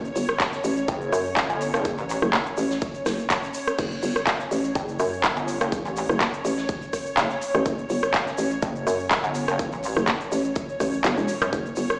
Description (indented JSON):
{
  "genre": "bass house",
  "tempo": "124 BPM",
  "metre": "4/4",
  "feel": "swing 54% on 16ths",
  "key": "F# phrygian",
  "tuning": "A4 = 440 Hz",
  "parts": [
    { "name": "hollow knocking FM bass", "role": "bass", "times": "0.0-12.0 s", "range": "E1 to F#2", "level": "-28 LUFS", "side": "equal", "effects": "sidechain pumping" },
    { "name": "big-room dance drum kit", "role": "drums", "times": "0.0-12.0 s", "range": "crash cymbal, handclaps, hi-hat, rim click", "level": "-28 LUFS", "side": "equal", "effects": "none" },
    { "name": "granular cloud pad", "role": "texture", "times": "0.0-12.0 s", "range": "C#5", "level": "-34 LUFS", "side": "equal", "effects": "built-in reverb, sidechain pumping" },
    { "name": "tube shaker", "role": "percussion", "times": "0.1-12.0 s", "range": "none", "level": "-45 LUFS", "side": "equal", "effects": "none" },
    { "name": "open jazz drum kit", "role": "drums", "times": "0.2-11.9 s", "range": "hi-hat, snare drum", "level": "-41 LUFS", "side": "equal", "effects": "none" },
    { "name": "electronic kick drum", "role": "drums", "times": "0.4-11.6 s", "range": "none", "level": "-34 LUFS", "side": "equal", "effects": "none" },
    { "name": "pulsing pluck wobble bass", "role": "bass", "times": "0.9-11.5 s", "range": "F#1 to F#2", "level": "-29 LUFS", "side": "equal", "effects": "distortion, chorus, tube saturation, sidechain pumping" }
  ],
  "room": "light reverb, studio reverb",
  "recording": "played on a big sound system in a bare room, large studio reverb, small speaker sound",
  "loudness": "-25 LUFS",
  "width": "mono",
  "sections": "0.0-12.0 A section",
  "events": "none",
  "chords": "0.0 F#5"
}